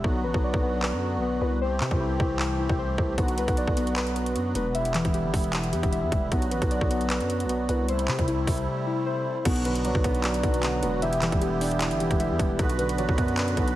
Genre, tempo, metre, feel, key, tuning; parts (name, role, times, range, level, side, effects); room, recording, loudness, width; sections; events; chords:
hip hop, trap; 153 BPM; 4/4; half-time; B phrygian; A4 = 440 Hz
musette accordion; sustained chords; 0.0-13.8 s; C3 to B4; -32 LUFS; right 2 dB
muted felt-like synth keys; arpeggios; 0.0-13.8 s; C3 to E5; -28 LUFS; left 2 dB; chorus, low-pass filter, digital delay
growling 808-style bass; bass; 0.0-13.8 s; E1 to C3; -29 LUFS; equal
trap drum kit; drums; 0.0-13.8 s; crash cymbal, handclaps, hi-hat, kick drum; -28 LUFS; equal
dark grand piano; accompaniment; 9.5-13.8 s; B2 to E4; -30 LUFS; right 2 dB; low-pass filter
light reverb, digital ambience; heavily compressed radio sound; -23 LUFS; side -14 dB against mid
0.0-9.5 A section; 9.5-13.8 B section
break 0.0-3.2, 8.7-9.5
0.0 Bm; 1.6 C6; 3.2 Bm; 4.7 Em7; 6.3 Bm; 7.9 C6; 9.5 Bm; 11.0 Em7; 12.6 Bm